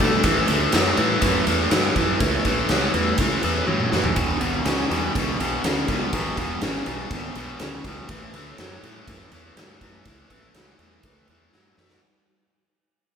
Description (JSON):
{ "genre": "blues rock power trio and southern rock", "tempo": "122 BPM", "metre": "4/4", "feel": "straight", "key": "A mixolydian", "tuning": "A4 = 440 Hz", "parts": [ { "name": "overdriven tonewheel organ", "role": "sustained chords", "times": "0.0-12.0 s", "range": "C4 to B#4", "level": "-35 LUFS", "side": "right 4 dB", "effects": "none" }, { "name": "biting overdriven guitar", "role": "riff", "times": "0.0-12.0 s", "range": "E2 to A3", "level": "-23 LUFS", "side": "left 1 dB", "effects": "none" }, { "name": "fuzz fingered electric bass", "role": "bass", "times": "0.0-12.0 s", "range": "E1 to B2", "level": "-29 LUFS", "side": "equal", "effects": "overdrive" }, { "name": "big rock drum kit", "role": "drums", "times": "0.0-12.0 s", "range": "kick drum, ride cymbal, snare drum, toms", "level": "-24 LUFS", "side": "equal", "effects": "none" } ], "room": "moderate large studio reverb, RT60 1.5 s", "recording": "band playing live in one room", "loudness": "-19 LUFS", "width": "side -7 dB against mid", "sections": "0.0-12.0 A section", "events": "fade-out 0.0-12.0; drum fill 3.7-4.2, 11.5-12.0", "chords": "0.2 A7#9; 4.2 E7#9; 8.1 A7#9" }